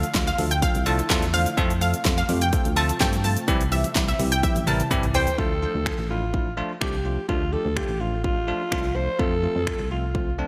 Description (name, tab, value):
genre	dance-pop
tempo	126 BPM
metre	4/4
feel	straight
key	D minor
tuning	A4 = 440 Hz
part	bell-like tine electric piano	accompaniment	0.0-10.5 s	E3 to C5	-31 LUFS	equal	sidechain pumping
part	glassy FM pad	sustained chords	0.1-5.4 s	C3 to F4	-39 LUFS	equal	none
part	solid FM bass	bass	0.0-10.4 s	A1 to G2	-29 LUFS	equal	sidechain pumping
part	pop drum kit	drums	0.0-10.3 s	finger snaps, handclaps, hi-hat, kick drum, shaker, snare drum, toms	-28 LUFS	equal	gated reverb
part	tube shaker	percussion	0.0-5.4 s	none	-46 LUFS	equal	none
part	analog pluck	melody	0.3-5.3 s	E5 to A5	-29 LUFS	equal	chorus, digital delay
part	breathy alto saxophone	melody	5.1-10.4 s	F4 to C5	-30 LUFS	equal	digital delay
room	moderate lush hall reverb, RT60 1.9 s, digital ambience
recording	bright 1980s-style digital production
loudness	-23 LUFS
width	mono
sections	0.0-5.4 A section; 5.4-10.5 B section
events	drop 0.0-5.4; drum fill 4.4-5.4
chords	0.0 Dm; 1.6 F; 3.5 C; 5.4 Dm; 9.2 F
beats	0.15 0.62 1.10 | 1.57 2.05 2.53 3.00 | 3.48 3.96 4.43 4.91 | 5.38 5.86 6.34 6.81 | 7.29 7.77 8.24 8.72 | 9.19 9.67 10.15